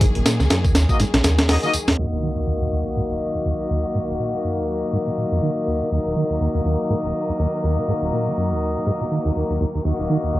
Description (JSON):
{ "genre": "breakbeat, breaks", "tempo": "122 BPM", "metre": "4/4", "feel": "swing 57% on 16ths", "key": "Eb minor", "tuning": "A4 = 440 Hz", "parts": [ { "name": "rich studio string section", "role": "sustained chords", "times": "0.0-10.4 s", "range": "Eb3 to Bb4", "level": "-28 LUFS", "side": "left 1 dB", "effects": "sidechain pumping, low-pass filter" }, { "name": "deep acid bass", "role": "riff", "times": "0.0-10.4 s", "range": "Eb1 to Eb3", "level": "-23 LUFS", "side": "right 1 dB", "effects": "lush chorus, analog delay" }, { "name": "saturated sub bass", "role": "bass", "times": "0.0-2.0 s", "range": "Bb1 to Eb2", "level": "-19 LUFS", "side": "equal", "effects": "none" }, { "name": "breakbeat sampler-style drum kit", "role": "drums", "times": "0.0-2.0 s", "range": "hi-hat, kick drum, snare drum", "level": "-18 LUFS", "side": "equal", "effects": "small room ambience" }, { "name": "tambourine", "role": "drums", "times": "0.0-2.0 s", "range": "none", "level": "-31 LUFS", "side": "equal", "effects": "low-pass filter on perc, small room ambience" }, { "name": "warm brass ensemble", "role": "stabs", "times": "0.9-10.4 s", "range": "Bb3 to Eb5", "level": "-24 LUFS", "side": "left 2 dB", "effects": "low-pass filter, analog delay" }, { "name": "impact", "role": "sound effects", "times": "2.0-3.9 s", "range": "none", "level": "-31 LUFS", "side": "equal", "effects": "none" } ], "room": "light reverb", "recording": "dry, gritty hardware recording, low-pass filter", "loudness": "-19 LUFS", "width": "side -16 dB against mid", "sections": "0.0-2.0 A section; 2.0-10.4 B section", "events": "impact 2.0-3.9; filter sweep on acid bass 2.0-10.4; filter sweep on string section 2.0-10.4; filter sweep 2.0-10.4", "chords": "0.0 Ebm" }